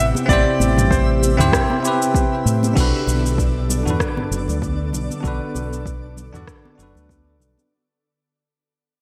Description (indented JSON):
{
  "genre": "sunset chillout",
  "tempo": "97 BPM",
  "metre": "4/4",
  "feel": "swing 56% on 16ths",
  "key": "unclear",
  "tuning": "A4 = 442 Hz",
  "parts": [
    { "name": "clear grand piano", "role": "melody", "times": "0.0-1.8 s", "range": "C5 to D5", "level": "-25 LUFS", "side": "equal", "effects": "delay, shimmer reverb" },
    { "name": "bell-like tine electric piano", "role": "accompaniment", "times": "0.0-7.7 s", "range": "C4 to D5", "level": "-25 LUFS", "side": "equal", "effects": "delay, shimmer reverb" },
    { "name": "ethereal airy pad", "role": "sustained chords", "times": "0.0-7.7 s", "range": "C3 to A4", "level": "-30 LUFS", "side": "equal", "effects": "ensemble chorus, built-in reverb, vintage 12-bit sampler grit" },
    { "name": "fingered electric bass", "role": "bass", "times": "0.0-7.6 s", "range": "F#1 to A2", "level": "-23 LUFS", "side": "equal", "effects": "none" },
    { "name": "twinkling granular texture", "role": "texture", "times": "0.1-7.7 s", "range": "D4 to E5", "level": "-39 LUFS", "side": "equal", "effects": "built-in reverb, shimmer reverb" },
    { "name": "congas", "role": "percussion", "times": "0.1-7.7 s", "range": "none", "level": "-32 LUFS", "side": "equal", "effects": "none" },
    { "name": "deep house drum kit", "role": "drums", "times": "0.2-7.7 s", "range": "cabasa, crash cymbal, rim click, toms", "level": "-27 LUFS", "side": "equal", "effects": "overdrive, gated reverb" },
    { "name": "electronic kick drum", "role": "drums", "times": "0.3-7.2 s", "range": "none", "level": "-23 LUFS", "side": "equal", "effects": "overdrive" }
  ],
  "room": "moderate plate reverb, RT60 1.9 s",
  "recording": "bright 1980s-style digital production",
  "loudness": "-19 LUFS",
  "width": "mono",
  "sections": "0.0-2.8 A section; 2.8-7.7 B section",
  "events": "fade-out 2.8-7.7",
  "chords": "0.0 Am9; 2.8 Bm7"
}